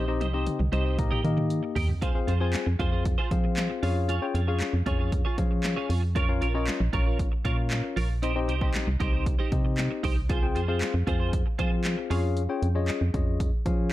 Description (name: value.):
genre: dance-pop.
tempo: 116 BPM.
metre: 4/4.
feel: straight.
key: F minor.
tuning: A4 = 440 Hz.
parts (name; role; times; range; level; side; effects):
tine electric piano; accompaniment; 0.0-13.9 s; Bb3 to Ab5; -31 LUFS; left 5 dB; sidechain pumping.
twelve-string electric guitar; riff; 0.0-12.3 s; Eb4 to Eb5; -34 LUFS; right 6 dB; ensemble chorus.
organ-like FM bass; bass; 0.0-13.9 s; Bb1 to F3; -27 LUFS; equal; sidechain pumping.
punchy analog drum machine; drums; 0.2-13.8 s; handclaps, hi-hat, kick drum, snare drum, toms; -28 LUFS; right 1 dB; none.
room: digital ambience.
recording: dark, warm production.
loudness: -24 LUFS.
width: side -15 dB against mid.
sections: 0.0-2.0 A section; 2.0-13.9 A section.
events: drop 0.0-2.0, 2.0-13.9; drum fill 0.0-2.0; tine electric piano fill 13.4-13.9.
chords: 0.0 Cm; 1.0 Eb; 2.0 Fm; 3.8 Db/F; 6.2 Bbm; 8.2 Cm; 10.3 Fm; 12.1 Db/F.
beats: 0.47 0.99 1.50 | 2.02 2.54 3.06 3.57 | 4.09 4.61 5.12 5.64 | 6.16 6.68 7.19 7.71 | 8.23 8.74 9.26 9.78 | 10.30 10.81 11.33 11.85 | 12.37 12.88 13.40 13.92.